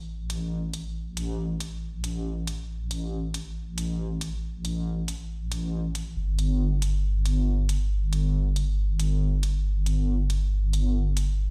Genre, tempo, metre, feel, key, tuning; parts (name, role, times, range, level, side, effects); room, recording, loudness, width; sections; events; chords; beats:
deep dubstep; 138 BPM; 4/4; swing 57% on 16ths, half-time; A4 = 445 Hz
wobble bass; bass; 0.0-11.5 s; G1 to A1; -28 LUFS; equal; chorus, tube saturation
electronic hi-hat; drums; 0.3-11.3 s; -40 LUFS; equal; overdrive
little or no reverb; played on a big sound system in a bare room, stone room reverb; -28 LUFS; mono
0.0-11.5 A section
0.08 0.52 | 0.95 1.39 1.82 2.26 | 2.69 3.12 3.56 4.00 | 4.43 4.86 5.30 5.73 | 6.17 6.60 7.04 7.47 | 7.91 8.34 8.78 9.21 | 9.65 10.08 10.52 10.95 | 11.39